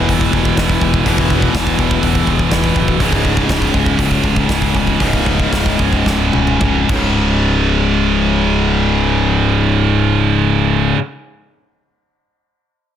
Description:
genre	heavy metal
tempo	104-124 BPM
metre	4/4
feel	straight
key	C# minor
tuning	A4 = 440 Hz
part	distorted electric guitar	riff	0.0-11.0 s	C#2 to E3	-17 LUFS	left 6 dB	overdrive
part	scooped high-gain guitar	riff	0.0-11.0 s	C#2 to E3	-18 LUFS	right 10 dB	distortion
part	fuzz fingered electric bass	bass	0.0-10.9 s	C#1 to E1	-19 LUFS	right 1 dB	overdrive
part	big rock drum kit	drums	0.1-7.0 s	crash cymbal, hi-hat, kick drum, snare drum, toms	-18 LUFS	equal	none
room	studio reverb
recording	dense, heavily limited modern master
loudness	-12 LUFS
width	side -10 dB against mid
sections	0.0-7.2 A section; 7.2-11.8 B section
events	slowing down 3.0-7.2; drum fill 6.1-7.2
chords	0.0 E5; 3.0 C#5

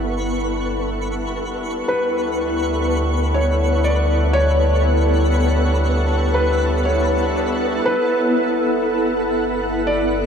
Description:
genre	ambient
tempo	60 BPM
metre	3/4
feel	straight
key	unclear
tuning	A4 = 439 Hz
part	shimmering ambient pad	sustained chords	0.0-10.3 s	B3 to F#5	-21 LUFS	equal	chorus, built-in reverb
part	warm sub bass	bass	0.0-10.3 s	G1 to D2	-21 LUFS	equal	none
part	pedal harmonium	drone	0.0-8.0 s	G3 to D4	-31 LUFS	equal	none
part	twinkling granular texture	texture	0.0-10.3 s	B4 to E6	-28 LUFS	left 1 dB	built-in reverb
part	felt-muted upright piano	melody	1.9-10.3 s	B4 to D5	-22 LUFS	equal	ping-pong delay
room	wet huge ambient reverb, RT60 8.3 s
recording	in a vast, echoing space, cassette tape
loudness	-16 LUFS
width	side -7 dB against mid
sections	0.0-7.9 A section; 7.9-10.3 B section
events	fade-in on harmonium 0.0-7.9; filter sweep on ambient pad 0.0-7.9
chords	0.0 Gadd9; 1.9 Dmaj7; 7.9 Asus2/G

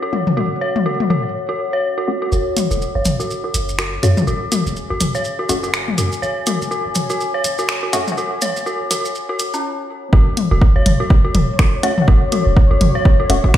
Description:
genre	minimal techno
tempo	123 BPM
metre	4/4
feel	swing 58% on 16ths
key	unclear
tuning	A4 = 441 Hz
part	dark detuned synth bell	riff	0.0-13.5 s	C#4 to C#5	-22 LUFS	equal	chorus, sidechain pumping, low-pass filter, digital delay
part	deep dark ambient pad	texture	0.0-13.6 s	F#4 to G#5	-27 LUFS	left 2 dB	chorus, built-in reverb, sidechain pumping
part	flickering grainy texture	texture	0.0-2.3, 10.4-13.6 s	C#5	-32 LUFS	right 1 dB	none
part	filtered dub chord stab	stabs	0.1-8.0, 11.8-13.4 s	A3 to F#4	-24 LUFS	left 3 dB	chorus, ping-pong delay
part	electronic toms	percussion	0.1-12.9 s	none	-20 LUFS	left 3 dB	overdrive, ping-pong delay
part	punchy sub bass	bass	2.3-13.4 s	E1 to F#2	-19 LUFS	equal	sidechain pumping
part	maracas	percussion	2.3-9.6 s	none	-27 LUFS	right 2 dB	none
part	punchy analog drum machine	drums	2.6-13.6 s	finger snaps, hi-hat	-23 LUFS	equal	none
part	electronic kick drum	drums	10.1-13.6 s	none	-12 LUFS	equal	none
room	light reverb, digital ambience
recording	played on a big sound system in a bare room, stone room reverb, high-pass filter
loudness	-15 LUFS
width	side -12 dB against mid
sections	0.0-2.3 A section; 2.3-10.1 B section; 10.1-13.6 C section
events	filter sweep on synth bell 0.0-2.3, 2.3-10.1; build-up 2.3-10.1; filter sweep 2.3-10.1; stop 9.6-10.1; drop 10.1-13.6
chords	0.0 F#5

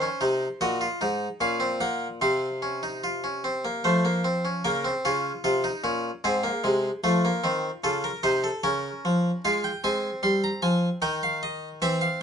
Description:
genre	classical, baroque-style 3-part fugue for harpsichord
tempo	75 BPM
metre	3/4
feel	straight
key	Bb minor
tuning	A4 = 440 Hz
part	harpsichord	solo	0.0-12.2 s	Ab2 to C6	-23 LUFS	equal	none
room	moderate studio reverb, RT60 0.6 s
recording	nothing above 10.3 kHz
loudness	-23 LUFS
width	side -7 dB against mid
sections	0.0-4.7 A section; 4.7-12.2 B section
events	none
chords	0.0 Cm7b5; 2.2 F5/C; 3.8 F; 4.7 Bbm/Db; 6.3 Ab; 7.1 F; 8.6 Bbm/Db; 9.4 Fm/Ab; 11.0 Eb

